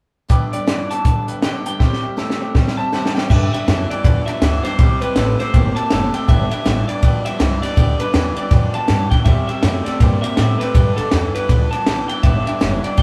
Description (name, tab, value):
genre	rockabilly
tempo	161 BPM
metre	4/4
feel	swing 62% on 8ths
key	G major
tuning	A4 = 440 Hz
part	bright upright piano	accompaniment	0.3-13.0 s	B4 to A5	-34 LUFS	equal	none
part	picked steel-string acoustic guitar	accompaniment	0.3-13.0 s	G2 to G4	-32 LUFS	equal	none
part	electric guitar through a small old amp	riff	0.3-13.0 s	G2 to Bb3	-27 LUFS	equal	warbly pitch drift
part	compact cocktail drum kit	drums	0.3-13.0 s	crash cymbal, hi-hat, kick drum, ride cymbal, snare drum	-19 LUFS	equal	none
part	electric guitar through a small old amp	melody	0.5-13.0 s	A4 to A5	-26 LUFS	equal	none
part	upright bass	bass	3.3-13.0 s	F#1 to A2	-22 LUFS	equal	none
room	moderate stone room reverb, RT60 1.3 s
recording	band playing live in one room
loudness	-17 LUFS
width	mono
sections	0.3-3.3 A section; 3.3-13.0 B section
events	drum fill 1.8-3.3; upright piano fill 2.7-3.3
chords	0.3 G; 1.8 C; 3.3 G; 4.8 C; 6.3 G; 9.3 C; 10.8 G